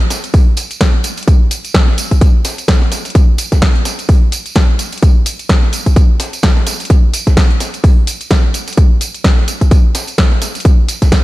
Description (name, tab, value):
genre	house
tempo	128 BPM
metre	4/4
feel	swing 58% on 16ths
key	none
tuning	none
part	breakbeat sampler-style drum kit	drums	0.0-11.2 s	hi-hat, snare drum	-26 LUFS	equal	high-pass filter on snare, high-pass filter on hats, high-pass filter on room
part	house drum kit	drums	0.1-11.2 s	hi-hat, snare drum	-19 LUFS	equal	none
part	tambourine	percussion	0.1-11.2 s	none	-24 LUFS	right 4 dB	none
part	electronic kick drum	drums	0.3-11.2 s	none	-9 LUFS	equal	overdrive
room	little or no reverb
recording	none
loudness	-10 LUFS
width	side -18 dB against mid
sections	0.0-11.2 A section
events	none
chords	none